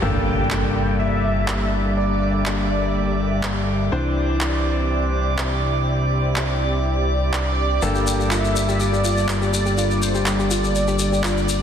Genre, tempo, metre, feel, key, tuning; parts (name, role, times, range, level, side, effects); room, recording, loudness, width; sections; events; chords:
progressive house; 123 BPM; 4/4; straight; G dorian; A4 = 440 Hz
wide unison lead; melody; 0.0-3.6, 7.3-11.6 s; C5 to G5; -26 LUFS; equal; lush chorus, cassette tape, ping-pong delay
lush unison pad; sustained chords; 0.0-11.6 s; C3 to E5; -28 LUFS; right 1 dB; chorus
clear grand piano; stabs; 0.0-11.6 s; G2 to C5; -25 LUFS; left 3 dB; low-pass filter, ping-pong delay
fat analog bass; bass; 0.0-11.6 s; G1 to C2; -23 LUFS; equal
impact; sound effects; 0.0-2.0 s; -27 LUFS; equal
drifting glass-harmonics texture; texture; 0.0-11.6 s; D5 to D6; -30 LUFS; right 4 dB; chorus, built-in reverb
electronic handclaps; drums; 0.5-11.3 s; -29 LUFS; right 1 dB; overdrive
shekere; percussion; 7.8-11.6 s; -28 LUFS; left 6 dB
soft round pluck; arpeggios; 8.0-11.3 s; F4 to G4; -28 LUFS; equal; chorus, ping-pong delay
light reverb, digital ambience; dense, heavily limited modern master; -18 LUFS; side -8 dB against mid
0.0-11.6 A section
impact 0.0-2.0; filter sweep on grand piano 0.0-11.6
0.0 Gmadd9; 3.9 Cadd9; 7.8 Gmadd9